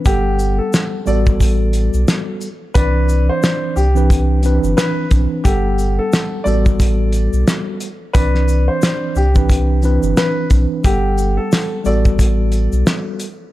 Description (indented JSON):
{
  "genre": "hip hop, boom-bap hip-hop",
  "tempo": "89 BPM",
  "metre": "4/4",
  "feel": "swing 58% on 16ths",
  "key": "G major",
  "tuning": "A4 = 440 Hz",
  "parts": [
    { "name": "mellow tine electric piano", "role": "accompaniment", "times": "0.0-13.3 s", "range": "E3 to F#5", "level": "-20 LUFS", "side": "right 1 dB", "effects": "medium stereo tremolo" },
    { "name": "dark upright piano", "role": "melody", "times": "0.1-13.0 s", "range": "G4 to D5", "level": "-22 LUFS", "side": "left 1 dB", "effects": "slapback echo" },
    { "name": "warm sub bass", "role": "bass", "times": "0.1-12.8 s", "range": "G1 to C2", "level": "-16 LUFS", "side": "equal", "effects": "none" },
    { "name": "cloth-damped thuddy drum kit", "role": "drums", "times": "0.1-13.4 s", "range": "hi-hat, kick drum, shaker, snare drum", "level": "-16 LUFS", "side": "equal", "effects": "none" },
    { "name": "tube shaker", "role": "percussion", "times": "0.1-13.4 s", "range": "none", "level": "-36 LUFS", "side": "left 6 dB", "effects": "none" }
  ],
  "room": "small room ambience",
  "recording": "dark, warm production",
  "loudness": "-13 LUFS",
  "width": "side -16 dB against mid",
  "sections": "0.1-13.5 A section",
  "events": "none",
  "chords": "0.1 Gmaj9; 2.8 Cmaj9; 5.4 Gmaj9; 8.1 Cmaj9; 10.8 Gmaj9",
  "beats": "| 0.06 0.73 1.40 2.08 | 2.75 3.43 4.10 4.78 | 5.45 6.12 6.80 7.47 | 8.15 8.82 9.49 10.17 | 10.84 11.52 12.19 12.87"
}